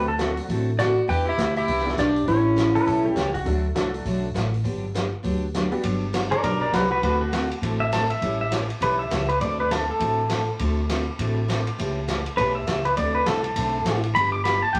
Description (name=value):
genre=country, western swing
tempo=202 BPM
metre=4/4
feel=swing 60% on 8ths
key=unclear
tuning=A4 = 442 Hz
part: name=pedal steel guitar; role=second line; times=0.0-0.4, 2.8-3.5, 6.3-14.8 s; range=F#4 to D6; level=-26 LUFS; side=equal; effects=none
part: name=honky-tonk upright piano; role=accompaniment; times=0.0-5.8 s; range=F#3 to A4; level=-32 LUFS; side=equal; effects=none
part: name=picked steel-string acoustic guitar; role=accompaniment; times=0.0-14.8 s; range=C#3 to A4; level=-32 LUFS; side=equal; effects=none
part: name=upright bass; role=bass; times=0.0-14.8 s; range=G1 to E2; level=-30 LUFS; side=equal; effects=none
part: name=swinging big-band drum kit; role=drums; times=0.2-14.8 s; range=hi-hat, kick drum, ride cymbal, snare drum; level=-33 LUFS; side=equal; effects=none
part: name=clean lap steel guitar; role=melody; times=0.8-3.1 s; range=E4 to G5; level=-25 LUFS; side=equal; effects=none
part: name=clear fiddle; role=second line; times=0.8-3.1 s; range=C#4 to G4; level=-29 LUFS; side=equal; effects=none
room=wet studio reverb, RT60 0.5 s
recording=vinyl crackle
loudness=-23 LUFS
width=mono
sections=0.0-5.8 A section; 5.8-14.8 B section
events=pedal steel guitar solo 5.8-14.8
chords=0.0 D7; 1.1 Em7; 2.3 A7; 3.5 D; 4.7 Gmaj7; 7.0 D7; 8.2 A7; 9.4 D7; 11.8 A7/C#; 13.0 D7; 14.2 G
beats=0.20 0.49 0.79 | 1.09 1.39 1.68 1.98 | 2.28 2.58 2.87 3.17 | 3.47 3.77 4.06 4.36 | 4.66 4.95 5.25 5.55 | 5.84 6.14 6.44 6.74 | 7.03 7.33 7.63 7.92 | 8.22 8.52 8.82 9.11 | 9.41 9.71 10.00 10.30 | 10.60 10.89 11.19 11.49 | 11.78 12.08 12.38 12.67 | 12.97 13.27 13.56 13.86 | 14.15 14.45 14.75